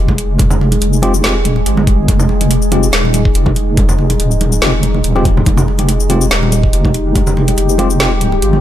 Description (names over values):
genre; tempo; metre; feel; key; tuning
deep dubstep; 142 BPM; 4/4; swing 54% on 16ths, half-time; F minor; A4 = 440 Hz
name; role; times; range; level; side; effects
deep dark ambient pad; sustained chords; 0.0-8.6 s; Ab3 to Ab4; -18 LUFS; equal; chorus, built-in reverb
deep soft wobble bass; bass; 0.0-8.6 s; Eb1 to G1; -14 LUFS; equal; chorus
electronic kick drum; drums; 0.1-7.2 s; none; -14 LUFS; equal; none
congas; percussion; 0.1-8.6 s; none; -21 LUFS; right 1 dB; dub echo
garage drum kit; drums; 0.2-8.5 s; hi-hat, shaker, snare drum; -18 LUFS; equal; none
tine electric piano; stabs; 1.0-8.1 s; Ab3 to G4; -20 LUFS; left 2 dB; medium stereo tremolo, dub echo
room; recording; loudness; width
little or no reverb; none; -10 LUFS; side -12 dB against mid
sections
0.0-8.6 A section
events
none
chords
0.0 Fmadd9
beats
| 0.40 0.82 1.24 1.66 | 2.08 2.51 2.93 3.35 | 3.77 4.20 4.62 5.04 | 5.46 5.89 6.31 6.73 | 7.16 7.58 8.00 8.42